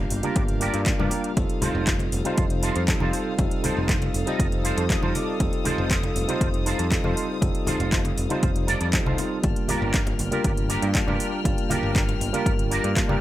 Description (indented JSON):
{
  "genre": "nu-disco, nu disco",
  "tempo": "119 BPM",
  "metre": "4/4",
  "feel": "straight",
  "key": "F mixolydian",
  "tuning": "A4 = 440 Hz",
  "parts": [
    { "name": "tine electric piano", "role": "accompaniment", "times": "0.0-13.2 s", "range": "G3 to A5", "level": "-28 LUFS", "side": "equal", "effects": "medium stereo tremolo, sidechain pumping, tape echo" },
    { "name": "rich chamber string section", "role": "sustained chords", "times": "0.0-13.2 s", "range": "Bb3 to F6", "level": "-34 LUFS", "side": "equal", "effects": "sidechain pumping" },
    { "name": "modern bright picked electric bass", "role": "bass", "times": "0.0-13.2 s", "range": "F1 to G2", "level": "-27 LUFS", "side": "equal", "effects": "none" },
    { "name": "house drum kit", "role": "drums", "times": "0.1-13.1 s", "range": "handclaps, hi-hat", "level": "-30 LUFS", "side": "equal", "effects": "overdrive" },
    { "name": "electric guitar with an envelope filter", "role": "riff", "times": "0.2-13.2 s", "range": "D4 to Eb5", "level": "-30 LUFS", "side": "right 3 dB", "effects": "ensemble chorus, tape echo" },
    { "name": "congas", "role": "percussion", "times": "0.2-13.2 s", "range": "none", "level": "-32 LUFS", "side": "left 2 dB", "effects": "none" },
    { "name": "electronic kick drum", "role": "drums", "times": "0.4-13.1 s", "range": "none", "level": "-25 LUFS", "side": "equal", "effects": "overdrive" }
  ],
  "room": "digital ambience",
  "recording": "none",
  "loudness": "-21 LUFS",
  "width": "side -14 dB against mid",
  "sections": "0.0-13.2 A section",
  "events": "clean electric guitar fill 4.6-5.4",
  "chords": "0.0 Gm7; 1.4 F7; 9.4 Gm7",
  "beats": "0.36 0.86 | 1.37 1.87 2.38 2.88 | 3.39 3.89 4.39 4.90 | 5.40 5.91 6.41 6.92 | 7.42 7.92 8.43 8.93 | 9.44 9.94 10.45 10.95 | 11.45 11.96 12.46 12.97"
}